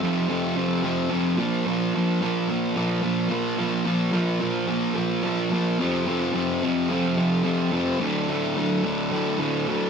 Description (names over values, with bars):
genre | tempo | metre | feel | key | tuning
rock | 109 BPM | 4/4 | straight | unclear | A4 = 440 Hz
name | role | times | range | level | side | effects
fuzz guitar | solo | 0.0-9.9 s | D2 to Bb3 | -22 LUFS | equal | distortion
room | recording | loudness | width
wet small room reverb, RT60 0.5 s | band playing live in one room | -22 LUFS | side -6 dB against mid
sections
0.0-9.9 A section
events
none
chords
0.0 F5; 1.4 Bb5; 5.8 F5; 8.0 D5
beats
0.30 0.85 | 1.40 1.95 2.50 3.04 | 3.60 4.15 4.70 5.25 | 5.80 6.35 6.91 7.46 | 8.01 8.57 9.12 9.68